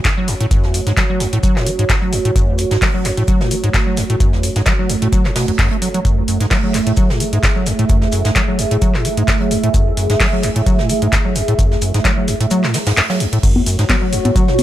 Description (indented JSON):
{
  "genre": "acid house",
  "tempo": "130 BPM",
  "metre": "4/4",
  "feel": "swing 54% on 16ths",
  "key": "F# minor",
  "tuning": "A4 = 440 Hz",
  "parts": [
    { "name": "dark analog pad", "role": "sustained chords", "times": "0.0-14.6 s", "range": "A3 to E5", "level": "-21 LUFS", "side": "right 3 dB", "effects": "chorus, sidechain pumping" },
    { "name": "booming analog drum machine", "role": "drums", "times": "0.0-14.6 s", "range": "congas, crash cymbal, handclaps, hi-hat", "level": "-20 LUFS", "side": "left 1 dB", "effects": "none" },
    { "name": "electronic kick drum", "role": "drums", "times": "0.0-14.5 s", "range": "none", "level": "-17 LUFS", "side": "equal", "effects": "none" },
    { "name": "jazz brush drum kit", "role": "drums", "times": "0.0-14.6 s", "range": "hi-hat, shaker, snare drum", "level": "-28 LUFS", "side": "equal", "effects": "high-pass filter on hats, high-pass filter on snare, high-pass filter on perc, high-pass filter on room" },
    { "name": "acid bass, square", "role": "riff", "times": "0.1-14.6 s", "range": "E2 to A3", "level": "-18 LUFS", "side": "equal", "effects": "overdrive, analog chorus" },
    { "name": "granular cloud pad", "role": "texture", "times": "13.9-14.6 s", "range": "F#4 to C#5", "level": "-21 LUFS", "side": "equal", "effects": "built-in reverb, sidechain pumping" }
  ],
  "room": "studio ambience",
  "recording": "none",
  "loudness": "-13 LUFS",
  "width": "side -13 dB against mid",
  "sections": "0.0-13.4 A section; 13.4-14.6 B section",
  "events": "kick drops out 12.5-13.4; drop 13.4-14.6",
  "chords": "0.0 F#m"
}